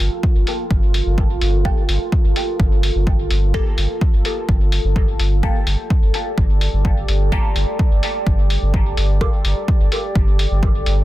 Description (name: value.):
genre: dub techno.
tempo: 127 BPM.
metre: 4/4.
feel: straight.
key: G minor.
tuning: A4 = 441 Hz.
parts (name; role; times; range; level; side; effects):
deep dark ambient pad; sustained chords; 0.0-11.0 s; F4 to D5; -25 LUFS; right 1 dB; chorus, built-in reverb, vintage 12-bit sampler grit, sidechain pumping.
warm sub bass; bass; 0.0-11.0 s; G1; -18 LUFS; equal; sidechain pumping.
electronic hi-hat; drums; 0.0-11.0 s; none; -26 LUFS; left 2 dB; none.
electronic kick drum; drums; 0.2-10.7 s; none; -18 LUFS; equal; overdrive.
filtered dub chord stab; stabs; 1.7-9.4 s; Bb3 to A4; -29 LUFS; equal; phaser, sidechain pumping, dub echo.
room: little or no reverb.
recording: dense, heavily limited modern master.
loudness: -15 LUFS.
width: side -16 dB against mid.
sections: 0.0-11.0 A section.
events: none.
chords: 0.0 Gm9.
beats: 0.23 0.71 1.18 | 1.65 2.12 2.60 3.07 | 3.54 4.01 4.49 4.96 | 5.43 5.90 6.38 6.85 | 7.32 7.79 8.27 8.74 | 9.21 9.68 10.16 10.63.